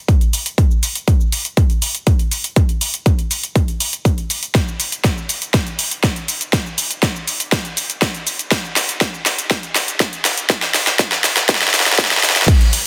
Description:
house; 121 BPM; 4/4; straight
big-room dance drum kit; drums; 0.1-12.8 s; crash cymbal, hi-hat, shaker, snare drum; -19 LUFS; equal; high-pass filter on perc, high-pass filter on hats, high-pass filter on snare, high-pass filter on cymbals, high-pass filter on room
electronic kick drum; drums; 0.1-12.6 s; -17 LUFS; equal
light reverb; dense, heavily limited modern master, high-pass filter; -17 LUFS; mono
0.0-12.5 A section
build-up 0.0-12.5; filter sweep 0.0-12.5; drum fill 4.5-12.5

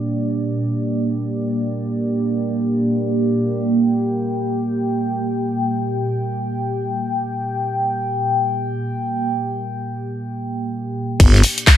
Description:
bass house; free time; G minor; A4 = 440 Hz
dark analog pad; sustained chords; 0.0-11.8 s; Bb3 to G5; -20 LUFS; right 1 dB; chorus, phaser, sidechain pumping
growling FM bass; bass; 11.2-11.4 s; G1; -11 LUFS; equal; overdrive, sidechain pumping
damped 70s drum kit; drums; 11.2-11.8 s; hi-hat, snare drum; -24 LUFS; right 2 dB; high-pass filter on hats, high-pass filter on snare, high-pass filter on room
electronic kick drum; drums; 11.2-11.8 s; -10 LUFS; equal
garage drum kit; drums; 11.2-11.8 s; crash cymbal, handclaps, hi-hat; -16 LUFS; left 1 dB
light reverb, small room ambience; -18 LUFS; side -11 dB against mid
0.0-11.2 A section
0.0 Gm

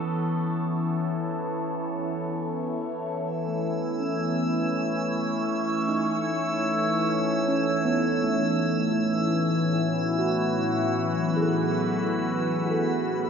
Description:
ambient; 70 BPM; 3/4; straight; A lydian; A4 = 441 Hz
evolving wavetable pad; sustained chords; 0.0-13.3 s; A2 to C#5; -26 LUFS; left 1 dB; phaser, built-in reverb
drifting glass-harmonics texture; texture; 3.7-13.3 s; E4 to E6; -29 LUFS; equal; chorus, built-in reverb
muted felt-like synth keys; arpeggios; 3.5-13.3 s; A3 to A4; -29 LUFS; right 2 dB; chorus, tape echo
wet lush hall reverb, RT60 2.6 s; nothing above 7.8 kHz; -24 LUFS; side -6 dB against mid
0.0-3.2 A section; 3.2-13.3 B section
fade-in on synth keys 3.2-13.3; filter sweep on ambient pad 3.2-13.3
0.0 Aadd9; 8.4 Bsus4/A

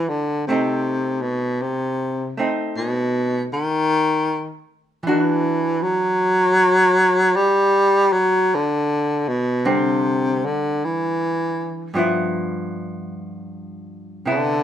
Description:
jazz ballad; 52 BPM; 4/4; swing 66% on 8ths; G major; A4 = 444 Hz
warm baritone saxophone; melody; 0.0-14.6 s; B2 to G3; -18 LUFS; equal
archtop guitar, miked and amplified; accompaniment; 0.0-14.6 s; G2 to F#4; -23 LUFS; equal
light reverb; minimal, uncompressed stereo recording; -18 LUFS; side -10 dB against mid
0.0-14.6 A section
0.5 B7b9; 5.1 Esus2; 9.6 D9sus4; 11.9 G6

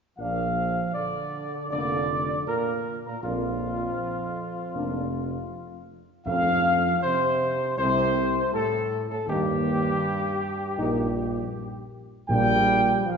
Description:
classical; 79 BPM; 4/4; straight; Bb major; A4 = 440 Hz
dark trumpet section; melody; 0.2-13.2 s; F4 to G5; -26 LUFS; left 1 dB
dark French horn section; sustained chords; 0.2-12.6 s; A3 to Eb4; -35 LUFS; left 3 dB
warm trombone section; sustained chords; 0.2-13.2 s; F2 to G3; -30 LUFS; right 2 dB
mellow tuba; bass; 0.2-12.9 s; F1 to F2; -30 LUFS; right 2 dB
timpani; percussion; 6.3-7.4, 12.3-13.2 s; F2 to Bb2; -33 LUFS; left 1 dB
wet recital hall reverb, RT60 1.7 s; recorded in a church or concert hall, nothing above 7.5 kHz; -23 LUFS; side -6 dB against mid
0.2-13.2 A section
0.2 Bb; 6.3 F; 9.3 Eb; 12.3 Bb

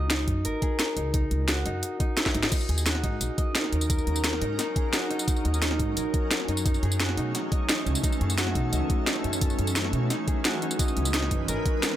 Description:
liquid drum and bass; 174 BPM; 4/4; straight; Eb phrygian; A4 = 438 Hz
concert harp; arpeggios; 0.0-12.0 s; Eb4 to Eb5; -31 LUFS; equal; tape echo
upright bass; bass; 0.0-11.6 s; Ab1 to Cb3; -28 LUFS; equal
drum and bass drum kit; drums; 0.1-12.0 s; crash cymbal, hi-hat, snare drum, tambourine; -28 LUFS; equal; overdrive
electronic kick drum; drums; 0.3-11.7 s; -27 LUFS; equal; overdrive
shimmering ambient pad; sustained chords; 3.4-12.0 s; Fb3 to Cb5; -32 LUFS; equal; chorus, built-in reverb, sidechain pumping
light reverb; -24 LUFS; side -12 dB against mid
0.0-12.0 A section
drum fill 2.3
0.0 Db5; 2.5 Ebm7; 6.7 Gbm7; 10.1 Dbm7

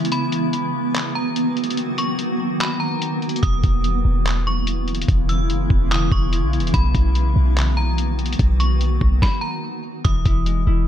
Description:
hip hop, atmospheric cloud-rap; 145 BPM; 4/4; half-time; E lydian; A4 = 441 Hz
granular cloud pad; sustained chords; 0.0-10.9 s; B2 to F#4; -23 LUFS; equal; built-in reverb, sidechain pumping
lo-fi sampler-style drum kit; drums; 0.0-10.6 s; handclaps, hi-hat, kick drum, snare drum; -22 LUFS; equal
metallic FM bell; melody; 0.1-10.9 s; A#5 to E6; -28 LUFS; left 1 dB; chorus, low-pass filter, tape echo
warm 808-style bass; bass; 3.4-10.9 s; E1 to B1; -18 LUFS; equal
concert harp; arpeggios; 10.1-10.9 s; E3 to E4; -25 LUFS; left 7 dB; low-pass filter, tape echo
light reverb; -17 LUFS; side -10 dB against mid
0.0-10.1 A section
break 0.0-3.4; stop 9.2-10.1
0.1 Bmaj7; 3.4 E6; 6.7 Bmaj7; 10.1 E6

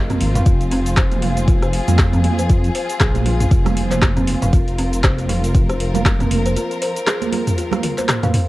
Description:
afro house; 118 BPM; 4/4; swing 58% on 16ths; F minor; A4 = 440 Hz
rich studio string section; sustained chords; 0.0-8.5 s; F3 to Bb4; -27 LUFS; left 2 dB; sidechain pumping, cassette tape
dark detuned saw bass; bass; 0.0-6.6 s; F1 to F2; -19 LUFS; equal; sidechain pumping
kalimba; arpeggios; 0.1-8.3 s; C4 to F5; -24 LUFS; left 1 dB; sidechain pumping, cassette tape, tape echo
deep house drum kit; drums; 0.1-8.5 s; cabasa, handclaps, hi-hat, rim click, toms; -21 LUFS; equal; cassette tape
congas; percussion; 0.1-8.3 s; -25 LUFS; right 8 dB
electronic kick drum; drums; 0.5-6.2 s; -16 LUFS; equal; cassette tape
small room ambience; home recording on cassette; -15 LUFS; side -18 dB against mid
0.0-8.5 A section
break 6.6-8.5; drum fill 7.8-8.5
0.0 Fm

